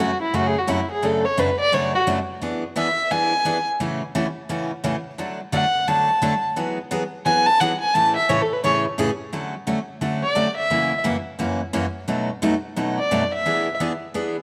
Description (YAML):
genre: country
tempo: 174 BPM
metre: 4/4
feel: swing 62% on 8ths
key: unclear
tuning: A4 = 440 Hz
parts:
  - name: dark fiddle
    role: melody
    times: 0.0-13.8 s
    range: E4 to A5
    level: -22 LUFS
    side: equal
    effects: none
  - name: picked steel-string acoustic guitar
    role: accompaniment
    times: 0.0-14.4 s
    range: F#2 to G#4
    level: -26 LUFS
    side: equal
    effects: none
room: moderate echo chamber reverb, RT60 2.5 s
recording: none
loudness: -22 LUFS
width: mono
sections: 0.0-9.3 A section; 9.3-14.4 A section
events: fiddle solo 0.0-9.3, 9.3-14.4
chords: 0.0 F#m; 1.0 Dmaj7/F#; 2.4 E7; 3.8 A6; 5.2 D; 6.6 Eadd9; 7.9 Amaj7; 9.3 Dmaj7; 10.7 F#7; 12.1 B7/F#; 13.5 E7